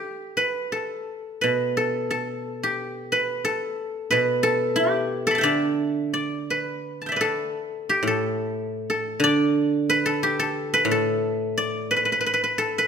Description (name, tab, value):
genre	chinese traditional, Chinese solo plucked strings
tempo	89 BPM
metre	2/4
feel	uneven beats, rubato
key	D zhi mode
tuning	A4 = 440 Hz
part	guzheng	solo	0.0-12.9 s	A2 to D6	-22 LUFS	equal	none
room	moderate recital hall reverb, RT60 1.6 s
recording	minimal, uncompressed stereo recording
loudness	-21 LUFS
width	side -7 dB against mid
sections	0.0-6.8 A section; 6.8-12.9 B section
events	none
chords	none